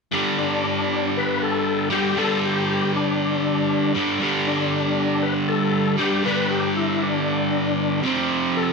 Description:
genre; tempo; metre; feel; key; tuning
rock; 117 BPM; 4/4; straight; unclear; A4 = 440 Hz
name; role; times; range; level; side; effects
distorted electric guitar; riff; 0.1-8.7 s; F2 to G3; -20 LUFS; right 1 dB; distortion
overdriven tonewheel organ; melody; 0.4-8.7 s; D4 to B4; -25 LUFS; left 6 dB; chorus vibrato, fast rotary speaker, slapback echo
room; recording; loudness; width
moderate plate reverb, RT60 3.4 s; none; -19 LUFS; side -4 dB against mid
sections
0.1-8.7 A section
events
none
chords
0.1 G5; 8.0 F

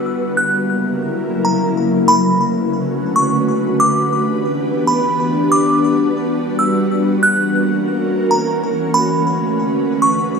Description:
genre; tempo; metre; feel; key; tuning
hip hop; 140 BPM; 4/4; half-time; B minor; A4 = 440 Hz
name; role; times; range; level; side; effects
ethereal airy pad; sustained chords; 0.0-10.4 s; C#3 to B4; -16 LUFS; equal; ensemble chorus, built-in reverb, low-pass filter
delicate synth tine bell; melody; 0.4-10.2 s; A#5 to F#6; -18 LUFS; right 1 dB; chorus, low-pass filter, ping-pong delay
room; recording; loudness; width
wet lush hall reverb, RT60 2.2 s; rough home demo mix; -14 LUFS; side -5 dB against mid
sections
0.0-2.1 A section; 2.1-10.4 B section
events
none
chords
0.4 F#7; 2.1 Bm9; 3.8 Em7; 5.5 Gmaj7; 7.2 F#7; 8.9 Bm9

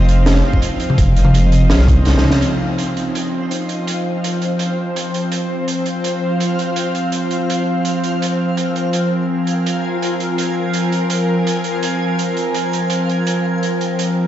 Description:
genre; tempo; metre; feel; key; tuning
half-time drum and bass; 166 BPM; 4/4; half-time; F minor; A4 = 441 Hz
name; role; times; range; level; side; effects
bowed-like drone; sustained chords; 0.0-14.3 s; F3 to F5; -18 LUFS; equal; built-in reverb, sidechain pumping
saturated sub bass; bass; 0.0-2.2 s; F1 to C2; -12 LUFS; equal; none
backwards swelling texture; texture; 0.0-14.3 s; Bb3 to Ab5; -24 LUFS; equal; built-in reverb
open jazz drum kit; drums; 0.1-14.1 s; hi-hat, snare drum, toms; -21 LUFS; right 1 dB; none
electronic kick drum; drums; 0.5-2.0 s; none; -15 LUFS; equal; none
room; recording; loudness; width
light reverb, small room ambience; played on a big sound system in a bare room, large studio reverb, nothing above 7.7 kHz; -15 LUFS; side -12 dB against mid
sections
0.0-2.4 A section; 2.4-14.3 B section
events
drum fill 2.1-2.4; band accent 2.3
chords
0.0 F5

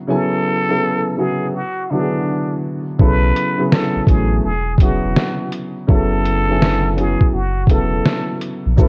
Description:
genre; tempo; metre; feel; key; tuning
lo-fi hip hop; 83 BPM; 4/4; swing 65% on 16ths; unclear; A4 = 443 Hz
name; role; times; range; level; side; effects
dark upright piano; accompaniment; 0.0-8.9 s; C#3 to G#5; -22 LUFS; equal; low-pass filter
trumpet with plunger mute; melody; 0.1-8.9 s; D4 to B4; -25 LUFS; equal; low-pass filter
warm sub bass; bass; 3.0-8.9 s; E1 to B1; -22 LUFS; equal; none
lo-fi sampler-style drum kit; drums; 3.0-8.9 s; hi-hat, kick drum, shaker, snare drum; -17 LUFS; equal; none
room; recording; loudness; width
digital ambience; cassette tape; -17 LUFS; mono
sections
0.0-8.8 A section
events
none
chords
0.1 F#m9; 1.5 Dadd9; 3.0 Bsus2; 4.4 Eadd9; 5.9 F#m9; 7.3 A69/E

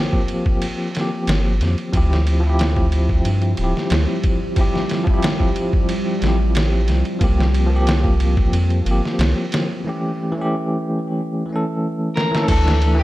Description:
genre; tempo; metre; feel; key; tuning
trip hop; 91 BPM; 4/4; straight; D minor; A4 = 440 Hz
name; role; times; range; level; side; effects
bell-like tine electric piano; accompaniment; 0.0-13.0 s; E3 to A4; -22 LUFS; equal; tremolo, low-pass filter, tape echo
trip hop sampler-style drum kit; drums; 0.1-13.0 s; crash cymbal, kick drum, ride cymbal, snare drum; -21 LUFS; equal; overdrive
round analog bass; bass; 1.3-13.0 s; D1 to G2; -17 LUFS; equal; none
deep dark ambient pad; sustained chords; 3.3-13.0 s; G3 to G4; -28 LUFS; right 1 dB; chorus, built-in reverb
electric guitar at the edge of break-up; melody; 12.2-13.0 s; G4 to Bb4; -22 LUFS; left 2 dB; vintage 12-bit sampler grit, dub echo
room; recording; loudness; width
digital ambience; none; -16 LUFS; side -16 dB against mid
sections
0.0-12.5 A section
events
break 9.8-12.5; drum fill 12.2-12.5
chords
0.0 C7sus4; 1.9 Dm11; 7.2 C7sus4; 9.8 A7; 12.5 Dsus2

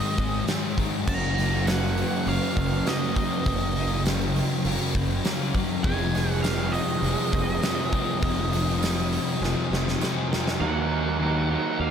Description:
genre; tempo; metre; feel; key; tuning
rock, shoegaze and dream pop; 101 BPM; 4/4; straight; unclear; A4 = 440 Hz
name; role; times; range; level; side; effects
octave-fuzz lead guitar; melody; 0.0-11.9 s; Eb5 to Bb5; -32 LUFS; equal; distortion, analog delay
twangy electric guitar; arpeggios; 0.0-11.9 s; Eb3 to Db4; -36 LUFS; right 9 dB; analog chorus, analog delay
raw garage guitar; riff; 0.0-11.9 s; F2 to Bb4; -31 LUFS; right 10 dB; overdrive, reverse reverb
thick fuzz guitar; riff; 0.0-11.9 s; F2 to Eb4; -28 LUFS; left 8 dB; distortion, analog chorus
fuzz fingered electric bass; bass; 0.2-11.9 s; F1 to Eb2; -28 LUFS; equal; overdrive
huge arena drum kit; drums; 0.2-10.6 s; crash cymbal, hi-hat, kick drum, snare drum; -28 LUFS; right 1 dB; none
tambourine; percussion; 0.5-10.2 s; none; -41 LUFS; right 12 dB; none
room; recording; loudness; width
light reverb, small room ambience; none; -22 LUFS; side -8 dB against mid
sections
0.0-10.6 A section; 10.6-11.9 B section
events
drum fill 9.4-10.6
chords
0.0 Ab; 1.1 Gb6; 5.8 Fm7; 10.6 Ebm7

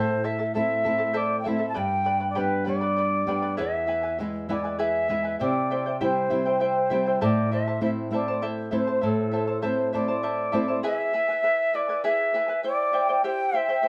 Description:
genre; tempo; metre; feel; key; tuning
andean folk, Andean ensemble; 66 BPM (dotted quarters); 6/8; straight; A minor; A4 = 440 Hz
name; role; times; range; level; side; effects
mellow quena; melody; 0.0-13.9 s; A4 to A5; -28 LUFS; equal; none
charango; accompaniment; 0.0-13.9 s; E4 to B5; -31 LUFS; equal; none
flamenco guitar; accompaniment; 0.0-10.8 s; E2 to E4; -30 LUFS; equal; none
room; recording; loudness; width
moderate large studio reverb, RT60 1.0 s; band playing live in one room; -25 LUFS; mono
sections
0.0-10.8 A section; 10.8-13.9 A section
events
none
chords
0.0 Am; 1.8 G; 3.6 E; 5.4 C; 7.2 Am; 10.8 E; 12.6 C

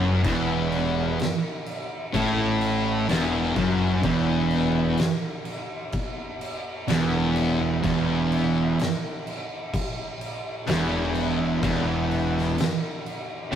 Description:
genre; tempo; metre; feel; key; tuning
stoner and doom metal; 63 BPM; 4/4; straight; unclear; A4 = 437 Hz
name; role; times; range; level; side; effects
distorted electric guitar; riff; 0.0-13.6 s; E2 to A2; -28 LUFS; left 2 dB; overdrive
thick fuzz guitar; riff; 0.0-13.6 s; E2 to A2; -26 LUFS; left 2 dB; distortion
thick fuzz guitar; riff; 0.0-13.6 s; E2 to A2; -26 LUFS; right 5 dB; distortion
fuzz fingered electric bass; bass; 0.0-13.6 s; E1 to A1; -30 LUFS; left 1 dB; overdrive
oversized low-tuned drum kit; drums; 0.2-13.6 s; crash cymbal, kick drum, snare drum; -30 LUFS; equal; none
room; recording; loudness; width
wet booth ambience, RT60 0.2 s; rough rehearsal-room recording, tube saturation; -22 LUFS; side -9 dB against mid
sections
0.0-13.6 A section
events
none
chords
0.0 Esus24

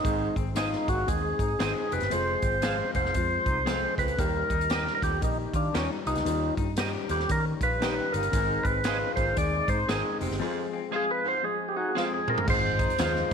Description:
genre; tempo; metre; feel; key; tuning
uptempo 1960s-style soul; 116 BPM; 4/4; swing 61% on 8ths; Ab major; A4 = 441 Hz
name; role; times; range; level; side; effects
percussive tonewheel organ; melody; 0.0-13.3 s; Db4 to D5; -28 LUFS; equal; slow rotary speaker, slapback echo
bright baby grand piano; accompaniment; 0.0-13.3 s; Eb3 to Bb4; -35 LUFS; left 12 dB; none
mellow tonewheel organ; sustained chords; 0.0-13.3 s; G3 to Ab4; -40 LUFS; right 1 dB; chorus vibrato, slow rotary speaker
vintage muted fingered electric bass; bass; 0.0-13.3 s; F1 to Eb3; -32 LUFS; right 1 dB; none
swinging big-band drum kit; drums; 0.0-13.3 s; crash cymbal, hi-hat, kick drum, snare drum, toms; -31 LUFS; equal; none
raspy baritone saxophone; riff; 0.1-13.3 s; Eb2 to C3; -38 LUFS; right 13 dB; none
electric guitar through a small old amp; riff; 0.4-13.3 s; C4 to G4; -39 LUFS; left 12 dB; none
electric guitar at the edge of break-up; stabs; 0.6-13.1 s; G4 to F5; -36 LUFS; right 14 dB; ensemble chorus
room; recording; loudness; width
small room reverb; 1960s-style stereo with parts hard left and right; -25 LUFS; side -6 dB against mid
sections
0.0-12.5 A section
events
tonewheel organ solo 0.0-12.5; drum fill 12.0-12.5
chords
0.0 Ab; 2.1 Fm; 4.2 Eb; 8.3 Ab; 10.4 Fm; 12.5 Ab6

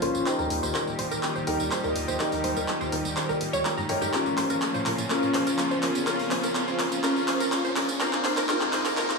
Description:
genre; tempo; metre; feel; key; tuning
progressive house; 124 BPM; 4/4; straight; Bb dorian; A4 = 439 Hz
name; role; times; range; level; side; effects
supersaw pad; sustained chords; 0.0-9.2 s; Bb2 to G4; -30 LUFS; right 1 dB; vintage 12-bit sampler grit
wide unison pluck; arpeggios; 0.0-9.0 s; G4 to Bb5; -31 LUFS; right 2 dB; phaser, digital delay
bright concert grand piano; stabs; 0.0-9.2 s; C4 to C5; -30 LUFS; left 4 dB; low-pass filter, digital delay
tight sequencer bass; bass; 0.0-9.2 s; Eb1 to Bb2; -38 LUFS; equal; none
pop drum kit; drums; 0.0-9.2 s; handclaps, hi-hat, tambourine; -30 LUFS; equal; overdrive
riser; sound effects; 0.2-9.2 s; none; -34 LUFS; right 1 dB; none
room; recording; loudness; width
moderate digital room reverb, RT60 0.9 s; high-pass filter, small room ambience; -24 LUFS; side -3 dB against mid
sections
0.0-9.2 A section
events
build-up 0.0-9.2; drum fill 0.0-9.2; filter sweep on synth pluck 0.0-9.2; filter sweep on grand piano 0.0-9.2; riser 0.2-9.2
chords
0.3 Eb; 4.1 Bbm; 8.0 Abadd9

